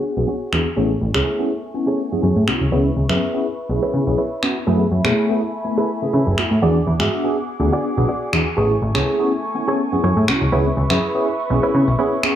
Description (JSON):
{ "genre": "filtered disco house", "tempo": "123 BPM", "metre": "4/4", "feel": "swing 54% on 16ths", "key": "A major", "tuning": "A4 = 439 Hz", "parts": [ { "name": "mellow tine electric piano", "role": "accompaniment", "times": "0.0-12.4 s", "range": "A3 to G#5", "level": "-21 LUFS", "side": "equal", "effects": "medium stereo tremolo, phaser, low-pass filter" }, { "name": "rich chamber violin section", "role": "sustained chords", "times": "0.0-12.4 s", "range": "A3 to D6", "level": "-29 LUFS", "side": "equal", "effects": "vintage 12-bit sampler grit, low-pass filter" }, { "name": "direct-recorded clean electric guitar", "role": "riff", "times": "0.0-12.2 s", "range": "E4 to E5", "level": "-24 LUFS", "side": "right 2 dB", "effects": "low-pass filter" }, { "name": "plucky analog bass", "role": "bass", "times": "0.2-12.0 s", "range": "F#1 to C#3", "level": "-18 LUFS", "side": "equal", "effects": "tube saturation, low-pass filter" }, { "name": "tambourine", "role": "percussion", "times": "0.2-12.2 s", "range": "none", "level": "-60 LUFS", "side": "right 1 dB", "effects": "none" }, { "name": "electronic finger snaps", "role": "drums", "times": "0.5-12.3 s", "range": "none", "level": "-23 LUFS", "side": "equal", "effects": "low-pass filter on hats, low-pass filter on snare, low-pass filter on room" } ], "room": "light reverb", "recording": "small room ambience", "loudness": "-16 LUFS", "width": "side -10 dB against mid", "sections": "0.0-12.4 A section", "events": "filter sweep 0.0-12.4", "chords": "0.0 E9; 0.8 Amaj7; 2.7 C#m7; 4.7 F#m11; 6.6 E9; 8.6 Amaj7; 10.5 C#m7" }